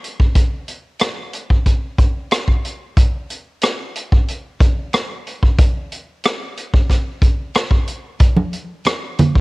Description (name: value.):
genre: soul.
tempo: 92 BPM.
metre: 4/4.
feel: straight.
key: none.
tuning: none.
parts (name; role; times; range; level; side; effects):
vintage drum kit; drums; 0.0-9.4 s; hi-hat, kick drum, rim click; -15 LUFS; equal; cassette tape.
congas; percussion; 8.2-9.3 s; none; -15 LUFS; right 2 dB; none.
room: little or no reverb.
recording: home recording on cassette.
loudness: -15 LUFS.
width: side -23 dB against mid.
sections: 0.0-9.4 A section.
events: none.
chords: none.